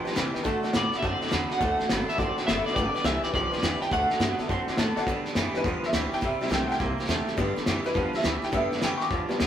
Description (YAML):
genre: rockabilly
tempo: 208 BPM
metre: 4/4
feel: swing 65% on 8ths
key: G major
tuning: A4 = 440 Hz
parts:
  - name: picked steel-string acoustic guitar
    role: accompaniment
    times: 0.0-9.5 s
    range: G2 to B4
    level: -36 LUFS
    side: left 2 dB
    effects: none
  - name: tack piano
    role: accompaniment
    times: 0.0-9.4 s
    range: G3 to D6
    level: -31 LUFS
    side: left 1 dB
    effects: none
  - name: twangy electric guitar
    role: riff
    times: 0.0-9.5 s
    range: G2 to C4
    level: -32 LUFS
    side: right 3 dB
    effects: vibrato effect
  - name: upright bass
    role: bass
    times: 0.0-9.5 s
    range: F#1 to D3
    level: -33 LUFS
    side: equal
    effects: none
  - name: cloth-damped thuddy drum kit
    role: drums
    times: 0.1-9.5 s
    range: hi-hat, kick drum, snare drum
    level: -29 LUFS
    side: left 1 dB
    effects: none
  - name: electric guitar at the edge of break-up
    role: melody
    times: 0.8-4.7 s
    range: B4 to G5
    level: -28 LUFS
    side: equal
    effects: tremolo, slapback echo
room: moderate stone room reverb, RT60 1.2 s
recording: band playing live in one room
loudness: -24 LUFS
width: side -10 dB against mid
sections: 0.0-5.1 A section; 5.1-9.5 B section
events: honky-tonk piano fill 0.0-0.5, 4.2-5.1; honky-tonk piano solo 5.1-9.5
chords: 0.5 D; 2.8 G; 3.9 D; 5.1 G; 6.2 C; 7.4 G